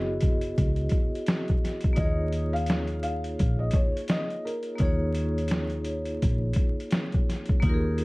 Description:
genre	lo-fi hip hop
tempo	85 BPM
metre	4/4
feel	swing 58% on 16ths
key	Eb minor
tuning	A4 = 440 Hz
part	vibraphone with hard mallets	accompaniment	0.0-8.0 s	Bb3 to Eb5	-32 LUFS	equal	cassette tape
part	vintage muted fingered electric bass	bass	0.0-8.0 s	Gb1 to Eb2	-28 LUFS	equal	none
part	trip hop sampler-style drum kit	drums	0.2-8.0 s	hi-hat, kick drum, snare drum	-26 LUFS	equal	none
part	felt-muted upright piano	melody	2.0-6.2 s	Bb4 to F5	-34 LUFS	left 1 dB	plate reverb
room	little or no reverb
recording	dark, warm production, vinyl crackle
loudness	-24 LUFS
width	side -24 dB against mid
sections	0.0-8.0 A section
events	none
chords	0.0 Gb9sus4; 2.0 Eb9sus4

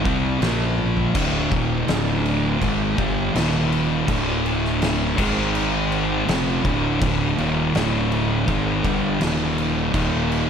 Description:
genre	stoner and doom metal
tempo	82 BPM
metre	4/4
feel	straight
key	unclear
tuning	A4 = 440 Hz
part	thick fuzz guitar	riff	0.0-10.5 s	D2 to B#3	-23 LUFS	left 10 dB	distortion
part	thick fuzz guitar	riff	0.0-10.5 s	D2 to B#3	-24 LUFS	right 9 dB	distortion
part	fuzz fingered electric bass	bass	0.0-10.5 s	D1 to B#1	-27 LUFS	equal	overdrive
part	oversized low-tuned drum kit	drums	0.1-10.5 s	crash cymbal, kick drum, snare drum, toms	-26 LUFS	equal	none
room	little or no reverb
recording	none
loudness	-19 LUFS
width	side -7 dB against mid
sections	0.0-10.5 A section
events	drum fill 0.8-1.1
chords	0.4 Bb5; 1.1 D5; 3.3 Eb5; 4.1 D5; 5.2 G#5; 6.3 Dm; 9.2 Eb5

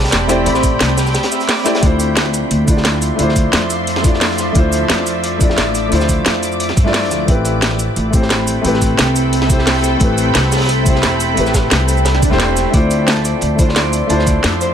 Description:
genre	liquid drum and bass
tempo	176 BPM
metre	4/4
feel	straight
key	D dorian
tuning	A4 = 440 Hz
part	warm concert grand piano	accompaniment	0.0-14.7 s	A3 to B5	-19 LUFS	left 2 dB	ping-pong delay
part	shimmering ambient pad	sustained chords	0.0-14.7 s	F3 to D6	-20 LUFS	right 2 dB	chorus, built-in reverb, vintage 12-bit sampler grit, sidechain pumping
part	Celtic harp	arpeggios	0.0-3.0, 12.7-14.7 s	C5 to D6	-23 LUFS	right 1 dB	digital delay
part	upright bass	bass	0.0-14.7 s	E1 to G2	-18 LUFS	equal	none
part	crunchy breakbeat drum kit	drums	0.0-14.7 s	hi-hat, snare drum	-24 LUFS	equal	high-pass filter on hats, high-pass filter on snare, high-pass filter on room
part	garage drum kit	drums	0.1-14.7 s	hi-hat, shaker, snare drum	-18 LUFS	equal	none
part	electronic kick drum	drums	0.6-14.3 s	none	-14 LUFS	equal	none
part	swell	sound effects	12.1-12.7 s	none	-24 LUFS	right 2 dB	none
room	light reverb, small room ambience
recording	none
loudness	-12 LUFS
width	side -8 dB against mid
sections	0.0-1.8 A section; 1.8-14.7 A section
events	drop 0.0-1.8, 1.8-14.7; swell 12.1-12.7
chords	0.0 Am9; 1.8 Dm9; 7.3 Am9; 12.7 Dm9

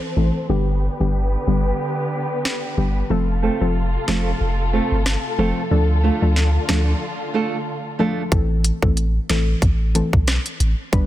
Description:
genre	dancehall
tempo	92 BPM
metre	4/4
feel	swing 56% on 16ths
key	A minor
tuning	A4 = 440 Hz
part	warm symphonic string section	sustained chords	0.0-8.3 s	C3 to C5	-26 LUFS	left 1 dB	sidechain pumping, low-pass filter
part	soft round pluck	accompaniment	0.2-11.1 s	D3 to B4	-24 LUFS	left 2 dB	chorus, sidechain pumping, low-pass filter
part	punchy sub bass	bass	0.2-11.1 s	F1 to D2	-20 LUFS	equal	none
part	island pop drum kit	drums	2.5-11.1 s	hi-hat, kick drum, rim click, snare drum	-23 LUFS	equal	none
part	nylon-string guitar	arpeggios	3.4-8.2 s	A3 to A4	-25 LUFS	right 5 dB	low-pass filter
room	digital ambience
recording	dense, heavily limited modern master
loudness	-18 LUFS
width	side -14 dB against mid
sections	0.0-8.3 A section; 8.3-11.1 B section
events	filter sweep 0.0-8.3; break 7.0-8.3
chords	0.5 G; 3.1 F; 5.7 Dm; 8.3 Am

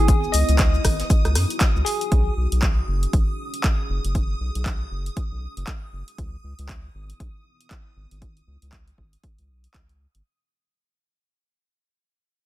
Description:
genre	deep house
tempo	118 BPM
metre	4/4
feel	swing 59% on 16ths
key	C# minor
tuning	A4 = 440 Hz
part	barky tine electric piano	melody	0.0-2.3 s	G#4 to D#5	-28 LUFS	left 1 dB	medium stereo tremolo, vintage 12-bit sampler grit, ping-pong delay
part	deep dark ambient pad	sustained chords	0.0-10.2 s	B3 to G#4	-33 LUFS	left 1 dB	chorus, built-in reverb, sidechain pumping
part	round analog bass	bass	0.0-10.2 s	F#1 to F#2	-23 LUFS	equal	sidechain pumping
part	string machine, violins	texture	0.0-10.3 s	D#6	-37 LUFS	equal	ensemble chorus
part	electronic kick drum	drums	0.1-9.9 s	none	-21 LUFS	equal	none
part	jazz brush drum kit	drums	0.1-2.0 s	hi-hat, shaker, snare drum	-36 LUFS	equal	none
part	punchy analog drum machine	drums	0.1-10.2 s	handclaps, hi-hat, rim click, shaker	-28 LUFS	equal	none
room	little or no reverb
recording	none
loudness	-20 LUFS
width	side -15 dB against mid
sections	0.0-10.3 A section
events	fade-out 0.0-10.3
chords	0.0 C#m9; 2.1 B6; 6.2 C#m9

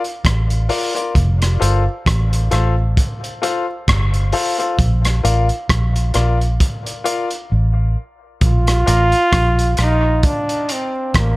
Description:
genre	dub reggae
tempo	66 BPM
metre	4/4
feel	swing 57% on 16ths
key	Bb major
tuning	A4 = 440 Hz
part	crunchy breakbeat drum kit	drums	0.0-11.4 s	hi-hat, kick drum, rim click	-19 LUFS	equal	none
part	vintage muted fingered electric bass	bass	0.3-11.4 s	F1 to Bb1	-16 LUFS	equal	none
part	clear upright piano	stabs	0.7-10.9 s	F4 to F5	-23 LUFS	left 4 dB	high-pass filter, dub echo
part	clear trombone	melody	8.4-11.4 s	Bb3 to F4	-17 LUFS	right 1 dB	dub echo
part	mellow electric guitar	accompaniment	8.9-10.8 s	Bb3 to Bb4	-35 LUFS	right 4 dB	none
room	light reverb, studio reverb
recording	none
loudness	-14 LUFS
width	side -20 dB against mid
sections	0.0-8.4 A section; 8.4-11.4 B section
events	break 0.0-8.4; filter sweep 4.8-11.4; drums muted 7.5-8.4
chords	0.0 Bb; 1.2 F; 4.8 Bb

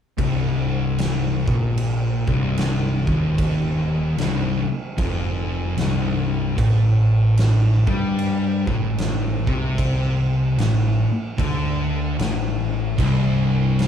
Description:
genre	stoner and doom metal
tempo	75 BPM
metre	4/4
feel	swing 62% on 8ths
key	C dorian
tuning	A4 = 440 Hz
part	thick fuzz guitar	riff	0.2-13.9 s	C2 to G3	-21 LUFS	left 5 dB	distortion
part	thick fuzz guitar	riff	0.2-13.9 s	C2 to G3	-24 LUFS	right 8 dB	distortion
part	growling picked electric bass	bass	0.2-13.9 s	C1 to G2	-29 LUFS	right 1 dB	overdrive
part	big rock drum kit	drums	0.2-13.9 s	crash cymbal, kick drum, snare drum	-26 LUFS	right 1 dB	none
part	thick fuzz guitar	riff	13.0-13.9 s	C2	-25 LUFS	right 2 dB	distortion
room	wet large studio reverb, RT60 0.8 s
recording	band playing live in one room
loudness	-18 LUFS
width	side -8 dB against mid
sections	0.2-13.9 A section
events	none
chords	0.2 Cm; 6.6 Amadd11; 13.0 N.C.

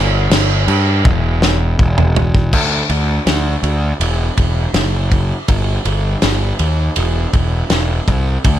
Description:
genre	quiet-loud alternative rock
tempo	81 BPM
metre	4/4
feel	straight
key	unclear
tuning	A4 = 440 Hz
part	fuzz picked electric bass	bass	0.0-8.6 s	E1 to G2	-15 LUFS	equal	overdrive
part	loose indie drum kit	drums	0.3-8.6 s	crash cymbal, kick drum, ride cymbal, snare drum, toms	-16 LUFS	equal	none
room	little or no reverb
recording	none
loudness	-13 LUFS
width	side -12 dB against mid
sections	0.0-2.5 A section; 2.5-8.6 B section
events	drum fill 1.0-2.5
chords	none

